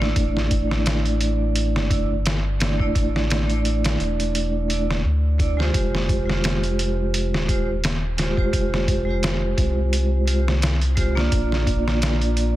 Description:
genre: trip hop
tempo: 86 BPM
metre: 4/4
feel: swing 55% on 16ths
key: unclear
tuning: A4 = 440 Hz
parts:
  - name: vibraphone with medium hard mallets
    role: accompaniment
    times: 0.0-12.6 s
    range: G#3 to D5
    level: -24 LUFS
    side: right 1 dB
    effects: harmonic tremolo, low-pass filter, tape echo
  - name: round analog bass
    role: bass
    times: 0.0-12.6 s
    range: Eb1 to D2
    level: -23 LUFS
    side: equal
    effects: none
  - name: trip hop sampler-style drum kit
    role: drums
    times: 0.0-12.6 s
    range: hi-hat, kick drum, snare drum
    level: -24 LUFS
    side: equal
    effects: none
room: digital ambience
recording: dense, heavily limited modern master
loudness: -19 LUFS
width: side -15 dB against mid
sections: 0.0-12.6 A section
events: none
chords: 0.2 Asus4; 5.7 Fmadd9; 11.3 Bb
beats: | 0.16 0.86 1.55 2.25 | 2.95 3.65 4.34 5.04 | 5.74 6.44 7.14 7.83 | 8.53 9.23 9.93 10.62 | 11.32 12.02

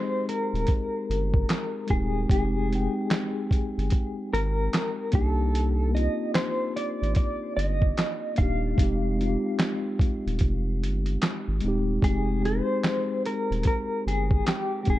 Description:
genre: lo-fi hip hop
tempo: 74 BPM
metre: 4/4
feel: swing 63% on 16ths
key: F minor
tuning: A4 = 435 Hz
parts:
  - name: mellow electric guitar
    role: melody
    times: 0.0-15.0 s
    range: G4 to F5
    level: -30 LUFS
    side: left 2 dB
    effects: tremolo, low-pass filter, tape echo
  - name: mellow tine electric piano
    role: accompaniment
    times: 0.0-15.0 s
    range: Ab3 to G5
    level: -30 LUFS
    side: left 1 dB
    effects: medium stereo tremolo, cassette tape, low-pass filter
  - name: lo-fi sampler-style drum kit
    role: drums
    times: 0.3-15.0 s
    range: handclaps, hi-hat, kick drum, snare drum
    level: -25 LUFS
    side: equal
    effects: overdrive
  - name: saturated sub bass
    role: bass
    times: 0.5-15.0 s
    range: Eb1 to C2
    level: -27 LUFS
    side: equal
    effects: none
room: light reverb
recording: dark, warm production, nothing above 10.8 kHz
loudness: -23 LUFS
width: side -15 dB against mid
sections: 0.0-12.0 A section; 12.0-15.0 B section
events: none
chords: 0.0 Fm9 (rootless); 5.1 Cm9; 8.8 Fm9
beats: 0.68 1.49 | 2.30 3.11 3.92 4.73 | 5.54 6.35 7.16 7.97 | 8.79 9.60 10.41 11.22 | 12.03 12.84 13.65 14.46

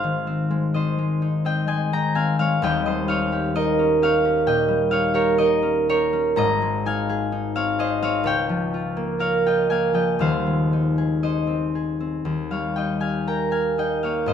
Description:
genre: classical, solo harp piece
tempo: 58-66 BPM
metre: 4/4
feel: rubato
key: Ab major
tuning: A4 = 440 Hz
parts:
  - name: concert harp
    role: solo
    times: 0.0-14.3 s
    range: Eb1 to Bb5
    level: -19 LUFS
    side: equal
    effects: none
room: little or no reverb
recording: close, detailed microphones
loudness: -19 LUFS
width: side -8 dB against mid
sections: 0.0-14.3 A section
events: none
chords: 0.0 Ab; 2.6 Eb7; 6.4 Ab; 8.3 Bbm/Db; 10.2 Ab/Eb; 12.3 Eb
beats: 0.74 1.68 | 2.61 3.54 4.46 5.38 | 6.38 7.32 8.26 9.20 | 10.21 11.24 12.25 13.26 | 14.28

